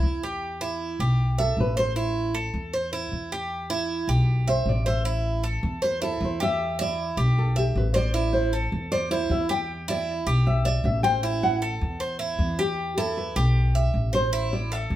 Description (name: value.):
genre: latin, Cuban son and guajira.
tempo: 155 BPM.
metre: 4/4.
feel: straight.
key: E minor.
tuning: A4 = 444 Hz.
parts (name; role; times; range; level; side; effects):
Cuban tres; arpeggios; 0.0-15.0 s; E4 to E5; -28 LUFS; right 2 dB; none.
upright bass; bass; 0.0-15.0 s; A1 to E2; -25 LUFS; equal; none.
nylon-string guitar; melody; 1.4-14.8 s; G4 to G5; -27 LUFS; left 1 dB; none.
room: moderate large studio reverb, RT60 0.9 s.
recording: band playing live in one room.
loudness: -22 LUFS.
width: side -13 dB against mid.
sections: 0.0-15.0 A section.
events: nylon-string guitar solo 0.0-15.0.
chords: 0.4 Em; 2.0 Am; 3.5 Em; 5.1 Am; 6.6 Em; 8.1 Am; 9.7 Em; 11.2 Am; 12.8 Em; 14.3 Am.